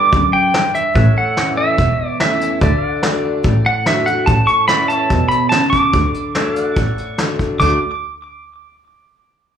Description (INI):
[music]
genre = honky-tonk and classic country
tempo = 144 BPM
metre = 4/4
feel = straight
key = D major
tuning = A4 = 440 Hz
[part]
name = pedal steel guitar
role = melody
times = 0.0-7.8 s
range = D5 to D6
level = -16 LUFS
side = right 1 dB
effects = slapback echo, tape echo
[part]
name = picked steel-string acoustic guitar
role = accompaniment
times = 0.0-7.8 s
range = E2 to G4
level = -21 LUFS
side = left 3 dB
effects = slapback echo
[part]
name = pedal steel guitar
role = sustained chords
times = 0.0-7.6 s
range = A4 to G5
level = -28 LUFS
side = right 2 dB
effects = none
[part]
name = rich double bass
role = bass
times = 0.1-7.7 s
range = E1 to E2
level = -17 LUFS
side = right 1 dB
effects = none
[part]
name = vintage brush drum kit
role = drums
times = 0.1-7.7 s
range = hi-hat, kick drum, ride cymbal, snare drum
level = -20 LUFS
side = equal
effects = none
[sound]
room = moderate club reverb, RT60 0.8 s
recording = live gig heard through the venue's PA, club ambience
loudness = -13 LUFS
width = side -8 dB against mid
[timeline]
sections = 0.0-4.3 A section; 4.3-7.6 B section; 7.6-9.3 C section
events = none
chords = 0.0 G; 1.0 A; 2.6 D; 4.3 A; 5.9 D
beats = 0.13 0.55 | 0.96 1.37 1.79 2.20 | 2.62 3.03 3.45 3.86 | 4.28 4.69 5.11 5.53 | 5.94 6.36 6.77 7.19 | 7.61